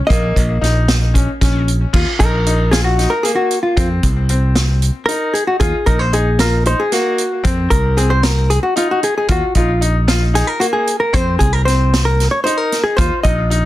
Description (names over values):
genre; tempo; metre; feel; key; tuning
progressive instrumental, band music in an uneven meter; 228 BPM (eighths); 7/8; straight; Eb dorian; A4 = 440 Hz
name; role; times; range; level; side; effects
hollow-body jazz guitar; melody; 0.1-13.5 s; F4 to Eb5; -17 LUFS; left 1 dB; none
bright grand piano; arpeggios; 0.1-13.6 s; Bb3 to F4; -22 LUFS; left 2 dB; ping-pong delay
modern bright fingered electric bass; bass; 0.1-13.7 s; Bb1 to F2; -16 LUFS; equal; none
vintage drum kit; drums; 0.1-13.6 s; crash cymbal, hi-hat, kick drum, snare drum; -18 LUFS; equal; none
room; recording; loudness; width
moderate small room reverb, RT60 0.5 s; dense, heavily limited modern master; -13 LUFS; side -15 dB against mid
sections
0.0-1.9 A section; 1.9-13.7 B section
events
hollow-body jazz guitar solo 1.9-13.7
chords
0.1 Bbsus4; 1.9 Ebsus2; 3.8 N.C.; 5.6 Ebmadd9; 7.5 N.C.; 9.3 Ebsus2; 11.1 N.C.; 13.0 Ebsus2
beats
| 0.10 0.36 0.62 0.88 1.15 1.41 1.67 | 1.93 2.19 2.46 2.72 2.98 3.25 3.51 | 3.77 4.03 4.29 4.56 4.82 5.08 5.35 | 5.61 5.87 6.13 6.40 6.66 6.92 7.19 | 7.45 7.71 7.98 8.24 8.50 8.77 9.03 | 9.29 9.56 9.82 10.08 10.35 10.61 10.87 | 11.14 11.40 11.66 11.93 12.19 12.45 12.72 | 12.98 13.24 13.51